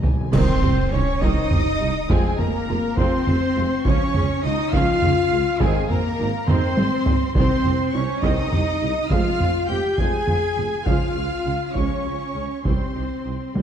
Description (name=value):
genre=cinematic, epic orchestral film score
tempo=68 BPM (dotted quarters)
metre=6/8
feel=straight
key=C phrygian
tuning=A4 = 440 Hz
part: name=warm symphonic violin section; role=melody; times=0.0-13.5 s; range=Ab5 to Ab6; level=-32 LUFS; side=left 1 dB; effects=none
part: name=rich symphonic violin section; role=second line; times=0.0-13.5 s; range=G4 to Ab5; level=-33 LUFS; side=left 1 dB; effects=none
part: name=mellow tuba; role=bass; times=0.0-13.6 s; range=F1 to Db2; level=-29 LUFS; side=right 4 dB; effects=none
part: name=warm symphonic double bass section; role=bass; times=0.0-13.6 s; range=Ab1 to F2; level=-28 LUFS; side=right 3 dB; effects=none
part: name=solo taiko drums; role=drums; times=0.0-13.6 s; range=none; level=-23 LUFS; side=equal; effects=none
part: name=timpani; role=percussion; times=0.0-1.2 s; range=C3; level=-27 LUFS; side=left 1 dB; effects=none
part: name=mellow hollow silver concert flute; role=second line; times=0.3-13.5 s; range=Ab4 to Ab5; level=-33 LUFS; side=left 1 dB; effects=none
part: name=dark symphonic viola section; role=accompaniment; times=0.3-13.6 s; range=Eb3 to Ab4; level=-29 LUFS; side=right 1 dB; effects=none
part: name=mellow French horn section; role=sustained chords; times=0.3-13.5 s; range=Ab3 to Ab4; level=-26 LUFS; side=left 4 dB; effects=none
part: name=warm trumpet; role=stabs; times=0.3-13.5 s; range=Ab4 to Ab5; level=-31 LUFS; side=right 2 dB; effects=none
part: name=rich symphonic cello section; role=bass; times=0.3-13.5 s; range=Ab3 to Ab4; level=-30 LUFS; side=right 3 dB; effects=none
part: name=clash cymbals and concert bass drum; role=percussion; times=0.3-1.5 s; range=none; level=-27 LUFS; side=right 1 dB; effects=none
part: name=impact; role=sound effects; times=0.3-2.1 s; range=none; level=barely audible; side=none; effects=none
room=moderate scoring stage reverb, RT60 1.7 s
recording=dark, warm production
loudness=-18 LUFS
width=side -8 dB against mid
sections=0.3-13.6 A section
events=timpani fill 0.0-0.3; drum fill 0.0-0.3, 6.5-7.3; band accent 0.3-0.9; impact 0.3-2.1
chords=0.3 Cm; 2.1 Fm; 3.9 Db; 5.6 Ab; 7.3 Cm; 9.1 Fm; 10.9 Db; 12.6 Cm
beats=| 0.33 1.22 | 2.10 2.98 | 3.85 4.73 | 5.60 6.47 | 7.34 8.22 | 9.10 9.98 | 10.86 11.75 | 12.65 13.55